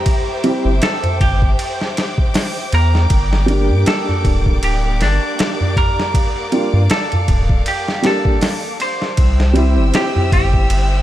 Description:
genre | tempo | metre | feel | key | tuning
trip hop | 79 BPM | 4/4 | swing 56% on 16ths | G dorian | A4 = 440 Hz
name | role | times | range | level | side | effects
semi-hollow electric guitar | melody | 0.0-11.0 s | D4 to C5 | -22 LUFS | right 1 dB | vintage 12-bit sampler grit, tape echo
felt-muted upright piano | accompaniment | 0.0-11.0 s | G3 to G4 | -21 LUFS | equal | tremolo, tape echo
rich symphonic violin section | sustained chords | 0.0-11.0 s | Bb3 to E6 | -26 LUFS | left 1 dB | none
boom bap sampler-style drum kit | drums | 0.1-10.9 s | hi-hat, kick drum, ride cymbal, snare drum | -18 LUFS | equal | none
round analog bass | bass | 0.7-11.0 s | D1 to G2 | -15 LUFS | equal | none
darbuka | percussion | 0.8-10.3 s | none | -23 LUFS | right 1 dB | none
room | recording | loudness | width
little or no reverb | none | -13 LUFS | side -13 dB against mid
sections
0.0-11.0 A section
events
none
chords
0.0 C; 3.1 Gm; 9.2 C

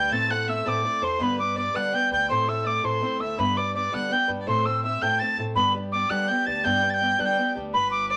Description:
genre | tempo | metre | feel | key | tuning
celtic folk, Celtic jig | 110 BPM (dotted quarters) | 6/8 | straight | G major | A4 = 440 Hz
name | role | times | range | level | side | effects
reedy mid whistle | melody | 0.0-8.2 s | B5 to A6 | -26 LUFS | equal | none
clear fiddle | second line | 0.0-8.2 s | B4 to A5 | -34 LUFS | equal | none
picked acoustic archtop guitar | accompaniment | 0.0-7.7 s | G2 to B4 | -32 LUFS | equal | none
upright bass | bass | 0.0-8.2 s | G1 to G3 | -35 LUFS | equal | none
room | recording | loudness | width
moderate small room reverb, RT60 0.5 s | none | -24 LUFS | mono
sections
0.0-7.7 A section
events
none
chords
0.1 Am; 1.2 G; 2.3 Am; 3.4 G; 4.5 Am; 5.6 G

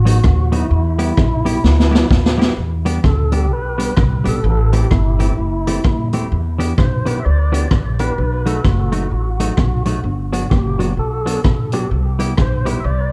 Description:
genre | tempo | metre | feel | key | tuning
ska | 128 BPM | 4/4 | swing 61% on 8ths | E minor | A4 = 435 Hz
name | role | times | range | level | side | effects
tonewheel organ | melody | 0.0-13.1 s | E4 to E5 | -27 LUFS | equal | slow rotary speaker, dub echo
upright bass | bass | 0.0-13.1 s | D#1 to E2 | -20 LUFS | equal | none
semi-hollow electric guitar | accompaniment | 0.1-12.8 s | E3 to G4 | -25 LUFS | equal | none
raw garage drum kit | drums | 0.1-12.7 s | hi-hat, kick drum, rim click, snare drum | -20 LUFS | equal | none
room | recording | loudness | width
light reverb | dark, warm production | -16 LUFS | mono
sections
0.0-2.6 A section; 2.6-13.1 B section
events
drum fill 1.6-2.6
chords
0.0 B; 0.7 Em; 2.6 Em7; 4.4 Am7; 6.3 Em7; 8.2 B7; 10.0 Gmaj7; 11.9 Cmaj7

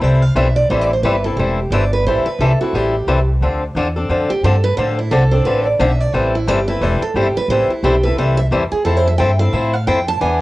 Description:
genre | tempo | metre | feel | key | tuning
acoustic string swing (jazz manouche) | 176 BPM | 4/4 | swing 60% on 8ths | A minor | A4 = 440 Hz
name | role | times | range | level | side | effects
picked steel-string acoustic guitar | second line | 0.0-10.4 s | E4 to A5 | -20 LUFS | right 3 dB | cassette tape
picked swing-style acoustic guitar | accompaniment | 0.0-10.4 s | D3 to A4 | -18 LUFS | left 2 dB | cassette tape
upright bass | bass | 0.0-10.4 s | E1 to A2 | -17 LUFS | equal | none
room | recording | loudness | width
moderate spring reverb, RT60 1.5 s, studio ambience | home recording on cassette | -14 LUFS | side -18 dB against mid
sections
0.0-10.4 A section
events
steel-string acoustic guitar solo 0.0-10.4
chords
0.0 Am7; 3.4 Dm7; 6.1 Am7; 8.9 Fmaj7

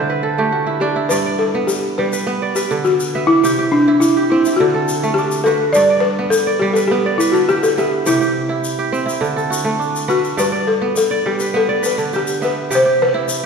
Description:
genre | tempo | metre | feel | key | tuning
west african traditional, West African string and xylophone music | 104 BPM | 4/4 | straight | G major | A4 = 440 Hz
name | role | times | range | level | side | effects
balafon | melody | 0.0-13.5 s | D4 to D5 | -16 LUFS | left 1 dB | none
kora | arpeggios | 0.0-13.5 s | G2 to F#5 | -19 LUFS | right 3 dB | none
tube shaker | percussion | 1.1-13.4 s | none | -28 LUFS | left 5 dB | none
room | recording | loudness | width
wet concert hall reverb, RT60 2.2 s | recorded in a church or concert hall | -14 LUFS | side -5 dB against mid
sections
0.0-1.1 A section; 1.1-13.5 B section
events
kora fill 0.0-1.1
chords
0.0 D5; 1.1 G; 3.4 C; 4.6 D; 5.8 G; 8.1 C; 9.2 D; 10.4 G; 12.7 C

